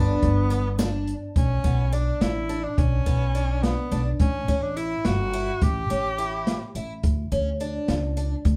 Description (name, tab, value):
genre	progressive instrumental, band music in an uneven meter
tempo	211 BPM (eighths)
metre	5/8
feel	straight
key	B minor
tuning	A4 = 440 Hz
part	clear tenor saxophone	melody	0.0-6.8 s	B3 to G4	-31 LUFS	equal	none
part	picked twelve-string acoustic guitar	arpeggios	0.0-8.3 s	B3 to E4	-33 LUFS	equal	none
part	upright bass	bass	0.0-8.6 s	G1 to D2	-28 LUFS	equal	none
part	open jazz drum kit	drums	0.2-8.6 s	hi-hat, kick drum, snare drum	-27 LUFS	equal	none
part	tube shaker	percussion	0.5-1.1 s	none	-50 LUFS	equal	none
room	moderate studio reverb, RT60 0.6 s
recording	heard from further back in the room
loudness	-24 LUFS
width	mono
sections	0.0-1.4 A section; 1.4-8.6 B section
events	none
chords	0.0 G; 1.4 Bmadd9; 4.2 A7; 7.0 N.C.